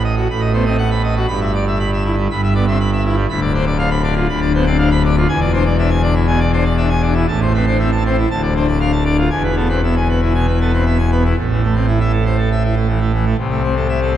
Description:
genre	classical, organ toccata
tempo	120 BPM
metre	4/4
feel	straight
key	E minor, A minor from 3.3 s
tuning	A4 = 441 Hz
part	pipe organ, full organ	solo	0.0-14.2 s	D1 to B5	-14 LUFS	equal	none
room	wet church reverb, RT60 3.4 s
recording	nothing above 10.6 kHz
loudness	-14 LUFS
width	side -11 dB against mid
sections	0.0-11.4 A section; 11.4-14.2 B section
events	none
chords	0.0 B7/A; 1.3 Em/G; 3.3 Bdim/D; 5.3 E7; 7.3 Am; 8.3 Dm; 9.3 E; 11.4 Am; 13.4 Am/C

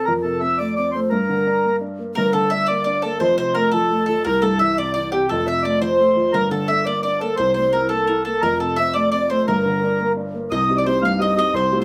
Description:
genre	celtic folk, Celtic jig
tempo	115 BPM (dotted quarters)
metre	6/8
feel	straight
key	G dorian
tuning	A4 = 440 Hz
part	mellow accordion	melody	0.0-11.8 s	G4 to F5	-24 LUFS	equal	none
part	breathy mellow round clay ocarina	second line	0.0-11.8 s	G4 to F5	-26 LUFS	equal	none
part	warm upright piano	accompaniment	0.0-11.8 s	F1 to G4	-25 LUFS	equal	none
part	mandolin	second line	2.2-11.8 s	G4 to F5	-27 LUFS	equal	none
room	wet small room reverb, RT60 0.5 s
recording	none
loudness	-19 LUFS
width	mono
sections	0.0-2.2 A section; 2.2-10.5 A section; 10.5-11.8 B section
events	none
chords	0.1 F; 1.1 Gm; 3.2 F; 4.2 C; 5.3 F; 6.3 Gm; 7.4 C7; 8.4 F; 9.5 Gm; 10.5 Cm

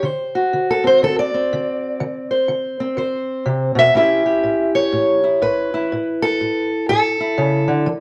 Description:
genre	acoustic country blues, solo or duo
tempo	123 BPM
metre	4/4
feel	swing 62% on 8ths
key	unclear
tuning	A4 = 441 Hz
part	fingerpicked steel-string acoustic guitar	solo	0.0-8.0 s	A2 to E5	-18 LUFS	equal	none
room	moderate studio reverb, RT60 0.8 s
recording	none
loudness	-18 LUFS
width	mono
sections	0.0-8.0 A section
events	none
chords	0.0 D7; 4.0 A7

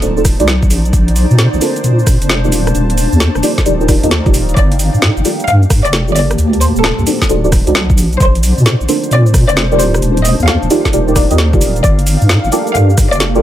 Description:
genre	UK garage, two-step garage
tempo	132 BPM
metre	4/4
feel	swing 66% on 16ths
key	unclear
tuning	A4 = 440 Hz
part	deep mellow chord stab	stabs	0.0-13.4 s	D4 to Eb5	-16 LUFS	right 1 dB	chorus, phaser, digital delay
part	deep soft wobble bass	bass	0.0-13.4 s	D1 to Bb2	-12 LUFS	equal	chorus
part	garage drum kit	drums	0.0-13.4 s	cabasa, hi-hat, rim click, snare drum	-18 LUFS	equal	overdrive, studio reverb
part	granular cloud pad	texture	0.0-13.4 s	Bb3 to A5	-20 LUFS	equal	built-in reverb, sidechain pumping
part	electronic kick drum	drums	0.2-13.1 s	none	-12 LUFS	equal	overdrive, studio reverb
part	rich chamber violin section	melody	4.6-13.3 s	A4 to F5	-18 LUFS	left 1 dB	digital delay
room	little or no reverb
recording	none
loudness	-9 LUFS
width	side -12 dB against mid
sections	0.0-13.4 A section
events	filter sweep on synth stab 0.0-13.4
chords	0.0 D7b9; 0.7 Ebmaj9; 4.6 Gm9; 6.4 D7b9; 8.0 Ebmaj9; 11.8 Gm9

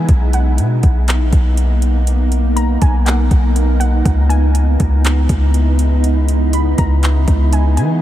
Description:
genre	hip hop, atmospheric cloud-rap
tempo	121 BPM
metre	4/4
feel	half-time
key	C# dorian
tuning	A4 = 441 Hz
part	warbly dusty pluck	melody	0.0-8.0 s	F#5 to B5	-28 LUFS	right 1 dB	chorus, low-pass filter, analog delay
part	shimmering ambient pad	sustained chords	0.0-8.0 s	C#3 to E4	-20 LUFS	equal	chorus, built-in reverb, sidechain pumping
part	long sustained 808-style bass	bass	0.0-8.0 s	A#1 to E3	-13 LUFS	equal	none
part	smooth R&B drum kit	drums	0.1-7.9 s	handclaps, hi-hat, kick drum	-16 LUFS	equal	overdrive
room	light reverb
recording	none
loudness	-12 LUFS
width	side -13 dB against mid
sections	0.0-8.0 A section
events	none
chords	0.1 Bmaj7; 4.1 C#m7

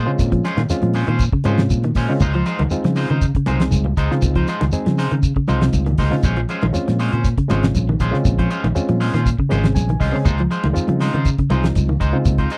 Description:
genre	afrobeat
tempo	119 BPM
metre	4/4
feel	straight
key	Bb minor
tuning	A4 = 440 Hz
part	electric guitar at the edge of break-up	stabs	0.0-12.6 s	Ab3 to C5	-27 LUFS	equal	none
part	fingered electric bass	bass	0.0-12.5 s	Ab1 to Db3	-22 LUFS	equal	none
part	overdriven reed electric piano	accompaniment	0.1-12.5 s	Ab3 to Ab5	-26 LUFS	equal	none
part	semi-hollow electric guitar	arpeggios	0.1-12.2 s	C3 to F3	-25 LUFS	equal	none
part	damped 70s drum kit	drums	0.2-12.6 s	hi-hat, kick drum, snare drum	-23 LUFS	equal	none
part	congas	percussion	0.2-12.4 s	none	-28 LUFS	equal	none
part	shekere	percussion	0.2-12.6 s	none	-27 LUFS	equal	none
room	light reverb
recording	dry, close 1970s-style studio recording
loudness	-18 LUFS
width	mono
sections	0.0-12.6 A section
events	drum fill 5.5-6.2; reed electric piano fill 9.5-10.3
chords	0.0 Bbm9; 2.2 Dbmaj9; 6.2 Bbm9; 10.3 Dbmaj9

